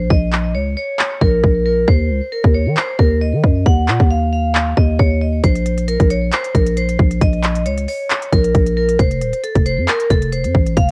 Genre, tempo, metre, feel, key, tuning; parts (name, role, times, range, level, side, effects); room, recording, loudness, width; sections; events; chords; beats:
hip hop, trap; 135 BPM; 4/4; half-time; Bb harmonic minor; A4 = 440 Hz
vibraphone with hard mallets; melody; 0.0-10.9 s; A4 to Gb5; -22 LUFS; equal; cassette tape, tape echo
growling 808-style bass; bass; 0.0-10.9 s; Eb1 to Eb3; -19 LUFS; equal
trap drum kit; drums; 0.1-10.9 s; handclaps, hi-hat, kick drum; -18 LUFS; equal
digital ambience; home recording on cassette; -16 LUFS; mono
0.0-10.9 A section
break 0.0-5.4; hi-hats muted 3.7-5.4
0.0 Bbm; 1.9 N.C.; 5.4 Bbmadd9; 9.0 F
| 0.10 0.55 0.99 1.44 | 1.88 2.33 2.77 3.21 | 3.66 4.10 4.55 4.99 | 5.44 5.88 6.33 6.77 | 7.21 7.66 8.10 8.55 | 8.99 9.44 9.88 10.32 | 10.77